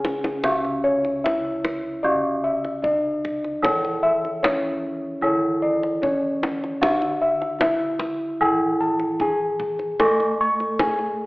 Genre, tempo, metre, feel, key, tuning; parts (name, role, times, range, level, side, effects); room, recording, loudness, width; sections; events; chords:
Javanese gamelan; 75 BPM; 4/4; straight; C# pelog; A4 = 441 Hz
gamelan-type bronze metallophone; melody; 0.0-11.3 s; C#4 to A4; -26 LUFS; equal
gamelan-type bronze metallophone; accompaniment; 0.0-11.3 s; C#3 to C#4; -27 LUFS; equal
gamelan-type bossed gongs; arpeggios; 0.0-11.2 s; C#5 to C#6; -24 LUFS; left 1 dB
gamelan-type bossed gongs; bass; 0.0-11.3 s; C#2 to A4; -30 LUFS; equal
kendang; percussion; 0.0-11.1 s; -27 LUFS; equal
moderate recital hall reverb, RT60 1.4 s; telephone sound; -20 LUFS; side -22 dB against mid
0.4-11.3 A section
drum fill 0.0-0.4